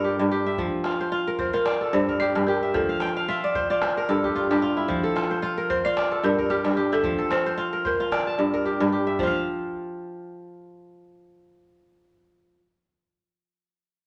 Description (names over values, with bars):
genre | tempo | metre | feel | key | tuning
west african traditional, West African string and xylophone music | 112 BPM | 4/4 | swing 56% on 16ths | F major | A4 = 441 Hz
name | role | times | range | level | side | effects
kora | arpeggios | 0.0-12.6 s | G2 to A5 | -26 LUFS | equal | none
calabash | percussion | 0.6-9.4 s | none | -36 LUFS | equal | none
balafon | melody | 1.4-12.5 s | G4 to D5 | -29 LUFS | equal | none
room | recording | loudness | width
wet studio reverb, RT60 1.0 s | none | -24 LUFS | mono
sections
0.0-9.2 A section; 9.2-13.5 B section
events
kora fill 2.9-4.9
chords
0.0 Gm; 0.6 F5; 1.7 Gm; 2.7 F; 3.8 N.C.; 4.9 F; 6.0 Gm; 7.0 F; 8.1 Gm; 9.2 F5